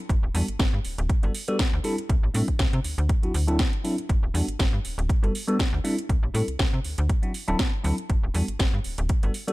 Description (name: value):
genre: filtered disco house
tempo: 120 BPM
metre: 4/4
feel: swing 55% on 16ths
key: G major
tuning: A4 = 442 Hz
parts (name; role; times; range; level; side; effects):
- slap-like FM bass; bass; 0.1-9.3 s; D1 to C3; -26 LUFS; equal; sidechain pumping, low-pass filter
- electronic kick drum; drums; 0.1-9.2 s; none; -24 LUFS; equal; small room ambience
- house drum kit; drums; 0.1-9.5 s; hi-hat, snare drum; -31 LUFS; equal; small room ambience, sidechain pumping on hats, sidechain pumping on cymbals
- bell-like tine electric piano; accompaniment; 0.3-9.5 s; F#3 to A4; -29 LUFS; equal; phaser, sidechain pumping, low-pass filter
room: little or no reverb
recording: none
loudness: -22 LUFS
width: side -20 dB against mid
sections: 0.0-9.5 A section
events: none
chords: 0.1 Gmaj7; 1.8 C6; 2.8 D7; 4.1 Gmaj7; 5.8 C6; 6.8 D7; 8.1 Gmaj7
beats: | 0.09 0.59 1.09 1.59 | 2.09 2.59 3.09 3.59 | 4.09 4.59 5.09 5.59 | 6.09 6.59 7.09 7.59 | 8.09 8.59 9.09